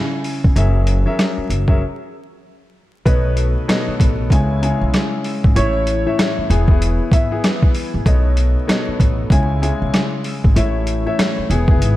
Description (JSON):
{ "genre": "hip hop, boom-bap hip-hop", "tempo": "96 BPM", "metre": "4/4", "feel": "swing 62% on 16ths", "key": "unclear", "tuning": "A4 = 440 Hz", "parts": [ { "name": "dark baby grand piano", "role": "accompaniment", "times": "0.0-12.0 s", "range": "A2 to G#5", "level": "-22 LUFS", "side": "left 3 dB", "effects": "cassette tape, high-pass filter, low-pass filter" }, { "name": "boom bap sampler-style drum kit", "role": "drums", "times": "0.2-12.0 s", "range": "hi-hat, kick drum, rim click, snare drum", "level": "-16 LUFS", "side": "equal", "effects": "overdrive" }, { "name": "upright bass", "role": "bass", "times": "0.4-12.0 s", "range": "E1 to C#2", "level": "-18 LUFS", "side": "equal", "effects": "none" }, { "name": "warm upright piano", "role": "melody", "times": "3.1-7.4 s", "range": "B4 to E5", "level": "-26 LUFS", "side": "right 1 dB", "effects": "high-pass filter, low-pass filter, analog delay" }, { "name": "tonewheel organ", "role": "sustained chords", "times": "3.1-12.0 s", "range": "C#3 to G#4", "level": "-30 LUFS", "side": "right 1 dB", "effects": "chorus vibrato, lush chorus, high-pass filter, low-pass filter" } ], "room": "light reverb", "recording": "vinyl crackle", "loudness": "-14 LUFS", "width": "side -16 dB against mid", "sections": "0.0-3.1 A section; 3.1-12.0 B section", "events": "break 1.8-3.1", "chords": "0.0 C#m; 0.6 F#7; 3.1 B7; 4.3 C#m; 5.6 A; 6.5 E; 8.1 B7; 9.3 C#m; 10.6 A", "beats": "| 0.56 1.19 1.81 2.44 | 3.06 3.69 4.31 4.93 | 5.56 6.18 6.81 7.43 | 8.06 8.69 9.31 9.94 | 10.56 11.19 11.81" }